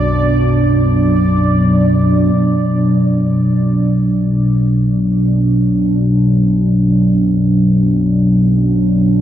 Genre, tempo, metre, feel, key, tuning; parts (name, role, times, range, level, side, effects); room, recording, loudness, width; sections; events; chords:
dark ambient drone; free time; B minor; A4 = 440 Hz
sweeping resonant pad; sustained chords; 0.0-9.2 s; B2 to D4; -12 LUFS; equal; chorus
analog drone; drone; 0.0-9.2 s; B1 to F#2; -19 LUFS; equal; chorus
bubbling stepped-filter texture; texture; 0.0-2.4 s; D5; -23 LUFS; right 1 dB; chorus, built-in reverb
wet cathedral reverb, RT60 6.1 s; in a vast, echoing space; -11 LUFS; side -11 dB against mid
0.0-2.4 A section; 2.4-9.2 B section
fade-in on synth drone 2.4-9.2
0.0 Bm